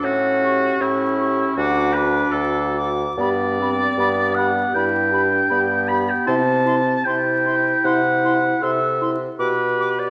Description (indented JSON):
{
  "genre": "classical, slow romantic movement for wind quintet",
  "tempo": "78 BPM",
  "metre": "4/4",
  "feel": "rubato",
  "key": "G major",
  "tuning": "A4 = 436 Hz",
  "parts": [
    { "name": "silver concert flute", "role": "melody", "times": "0.0-9.9 s", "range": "B5 to D6", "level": "-30 LUFS", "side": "equal", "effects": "none" },
    { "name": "warm oboe", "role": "second line", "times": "0.0-10.1 s", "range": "E4 to B5", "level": "-23 LUFS", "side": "equal", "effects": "none" },
    { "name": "clear clarinet", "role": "accompaniment", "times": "0.0-10.1 s", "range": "B3 to A4", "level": "-28 LUFS", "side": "equal", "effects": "none" },
    { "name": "mellow French horn", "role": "accompaniment", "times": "0.0-9.9 s", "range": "E4 to G4", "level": "-30 LUFS", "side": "equal", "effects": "none" },
    { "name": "warm bassoon", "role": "bass", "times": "0.0-10.1 s", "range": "D2 to C3", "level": "-25 LUFS", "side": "equal", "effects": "none" }
  ],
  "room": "wet scoring stage reverb, RT60 1.9 s",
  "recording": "vinyl crackle",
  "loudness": "-19 LUFS",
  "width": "mono",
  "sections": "0.0-10.1 A section",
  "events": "none",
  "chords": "0.0 A7; 1.6 D; 3.2 G; 6.3 C; 9.4 G/B"
}